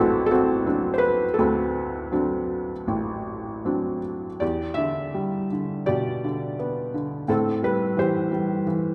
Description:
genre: classical, lyrical solo piano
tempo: 75-88 BPM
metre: 4/4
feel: rubato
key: E minor from 4.4 s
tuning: A4 = 436 Hz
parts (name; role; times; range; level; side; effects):
- felt-muted upright piano; solo; 0.0-8.9 s; A1 to E5; -25 LUFS; equal; none
room: wet recital hall reverb, RT60 1.6 s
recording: recorded in a church or concert hall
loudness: -25 LUFS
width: mono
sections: 0.0-4.4 A section; 4.4-8.9 B section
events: none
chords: 0.0 D7; 4.4 Em7; 7.3 Am7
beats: 0.67 | 1.39 2.12 2.87 3.65 | 4.42 5.15 5.88 6.59 | 7.28 7.98 8.67

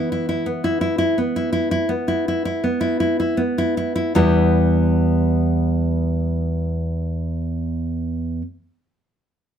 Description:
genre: romantic piece for solo classical guitar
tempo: 38-44 BPM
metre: 4/4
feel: rubato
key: E minor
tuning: A4 = 440 Hz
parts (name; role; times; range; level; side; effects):
- nylon-string guitar; solo; 0.0-8.4 s; E2 to G4; -18 LUFS; equal; none
room: little or no reverb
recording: close, detailed microphones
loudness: -18 LUFS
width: side -8 dB against mid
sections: 0.0-4.2 A section; 4.2-9.6 B section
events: slowing down 0.0-4.2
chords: 0.0 E5; 4.2 Em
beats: 1.18 2.64 | 4.16 5.54 6.92 8.32

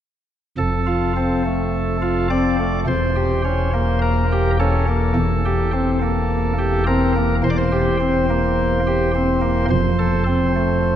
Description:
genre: classical, chorale-style piece for pipe organ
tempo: 53 BPM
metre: 4/4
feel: rubato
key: F major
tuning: A4 = 441 Hz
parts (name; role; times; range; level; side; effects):
- chamber organ, cornet; solo; 0.6-11.0 s; E1 to D5; -16 LUFS; equal; none
room: wet church reverb, RT60 3.6 s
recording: none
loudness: -17 LUFS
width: side -10 dB against mid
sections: 0.6-11.0 A section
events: none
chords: 0.6 F; 2.9 Edim7; 5.2 C7/E; 9.7 F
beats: | 0.57 1.74 2.89 4.03 | 5.17 6.31 7.44 8.57 | 9.69 10.83

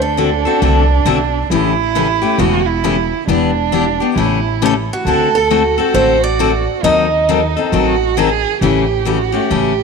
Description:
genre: acoustic string swing (jazz manouche)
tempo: 135 BPM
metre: 4/4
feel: swing 63% on 8ths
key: A major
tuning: A4 = 440 Hz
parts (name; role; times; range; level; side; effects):
- picked acoustic archtop guitar; melody; 0.0-0.9, 4.7-8.4 s; F#4 to D#5; -17 LUFS; right 1 dB; none
- warm violin; second line; 0.0-9.8 s; D4 to A4; -17 LUFS; right 11 dB; none
- upright bass; bass; 0.0-9.8 s; E1 to D#2; -19 LUFS; right 1 dB; tube saturation
- picked steel-string acoustic guitar; accompaniment; 0.2-9.7 s; C#3 to A4; -16 LUFS; left 10 dB; none
room: moderate plate reverb, RT60 2.5 s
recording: 1960s-style stereo with parts hard left and right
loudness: -12 LUFS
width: side -5 dB against mid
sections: 0.0-9.8 A section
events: none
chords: 0.0 D7; 1.5 A7; 3.3 Em7; 4.2 A7; 5.1 D7; 6.8 D#dim7; 8.6 A7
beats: 0.17 0.62 1.06 | 1.50 1.95 2.39 2.84 | 3.28 3.73 4.17 4.61 | 5.06 5.50 5.95 6.39 | 6.84 7.28 7.72 8.17 | 8.61 9.06 9.50

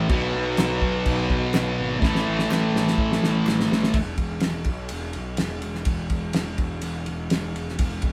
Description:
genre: garage rock duo or trio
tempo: 125 BPM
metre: 4/4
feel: straight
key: unclear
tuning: A4 = 441 Hz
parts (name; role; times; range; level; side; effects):
- thick fuzz guitar; riff; 0.0-4.0 s; A2 to B3; -25 LUFS; equal; distortion
- fuzz picked electric bass; bass; 0.0-8.1 s; E1 to B1; -32 LUFS; equal; overdrive
- cloth-damped thuddy drum kit; drums; 0.1-8.1 s; crash cymbal, kick drum, ride cymbal, snare drum; -28 LUFS; equal; none
- group handclap; percussion; 0.6-3.6 s; none; -38 LUFS; equal; none
room: light reverb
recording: band playing live in one room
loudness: -24 LUFS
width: mono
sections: 0.0-4.0 A section; 4.0-8.1 B section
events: drum fill 2.0-4.0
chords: 0.1 B5; 2.0 A5; 4.0 E5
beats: | 0.11 0.59 1.07 1.55 | 2.03 2.51 2.99 3.47 | 3.95 4.43 4.92 5.40 | 5.88 6.36 6.84 7.32 | 7.80

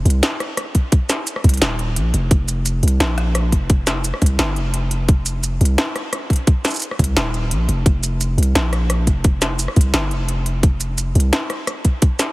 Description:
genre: half-time drum and bass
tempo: 173 BPM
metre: 4/4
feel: swing 54% on 16ths, half-time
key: unclear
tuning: A4 = 440 Hz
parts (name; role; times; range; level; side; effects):
- long sustained 808-style bass; bass; 0.0-11.3 s; Eb1 to C2; -18 LUFS; equal; none
- industrial drum kit; drums; 0.1-12.3 s; hi-hat, rim click, shaker, snare drum; -21 LUFS; equal; none
- electronic kick drum; drums; 0.8-12.1 s; none; -14 LUFS; equal; none
room: little or no reverb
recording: heavily compressed radio sound, multiband compression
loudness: -16 LUFS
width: side -20 dB against mid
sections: 0.0-12.3 A section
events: none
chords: none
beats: 0.23 0.57 | 0.92 1.27 1.61 1.96 | 2.31 2.66 3.00 3.35 | 3.70 4.04 4.39 4.74 | 5.08 5.43 5.78 6.12 | 6.47 6.82 7.17 7.51 | 7.86 8.21 8.55 8.90 | 9.24 9.59 9.94 10.29 | 10.63 10.98 11.33 11.67 | 12.02

